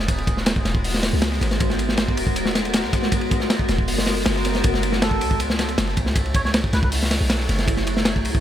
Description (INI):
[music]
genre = drum and bass, jungle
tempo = 158 BPM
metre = 4/4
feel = straight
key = unclear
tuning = A4 = 440 Hz
[part]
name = warm 808-style bass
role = bass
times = 0.0-8.4 s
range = D#1 to D#2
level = -25 LUFS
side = equal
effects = none
[part]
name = crunchy breakbeat drum kit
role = drums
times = 0.1-8.4 s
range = hi-hat, kick drum, ride cymbal, snare drum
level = -21 LUFS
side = equal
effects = none
[part]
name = dusty soul sampler-style drum kit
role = drums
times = 0.1-8.3 s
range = hi-hat, snare drum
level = -34 LUFS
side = left 2 dB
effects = none
[part]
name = melodica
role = melody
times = 5.0-6.9 s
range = A4 to C#5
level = -32 LUFS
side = right 3 dB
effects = dub echo
[sound]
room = small room ambience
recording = none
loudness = -18 LUFS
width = side -11 dB against mid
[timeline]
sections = 0.0-8.4 A section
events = none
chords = 0.0 G#m9; 4.6 F#m9